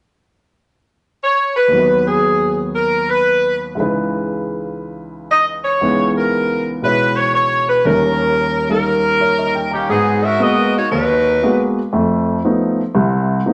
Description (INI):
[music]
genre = jazz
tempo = 118 BPM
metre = 4/4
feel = swing 66% on 8ths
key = G# minor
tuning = A4 = 440 Hz
[part]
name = bright saxophone section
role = melody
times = 1.2-11.7 s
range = D#3 to E5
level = -17 LUFS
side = equal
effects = none
[part]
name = warm grand piano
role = accompaniment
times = 1.7-13.5 s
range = C2 to A#5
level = -20 LUFS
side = equal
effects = none
[sound]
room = wet studio reverb, RT60 1.0 s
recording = nothing above 10.9 kHz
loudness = -16 LUFS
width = mono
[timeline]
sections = 0.0-1.7 A section; 1.7-9.9 B section; 9.9-13.5 C section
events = none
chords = 0.0 N.C.; 1.7 G#m7/D#; 3.8 C#m7; 7.9 D#7; 9.9 G#m9; 11.9 F7#11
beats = 0.19 0.70 1.21 | 1.72 2.23 2.75 3.26 | 3.77 4.28 4.79 5.30 | 5.81 6.32 6.83 7.34 | 7.86 8.37 8.88 9.39 | 9.90 10.40 10.91 11.42 | 11.93 12.44 12.95 13.46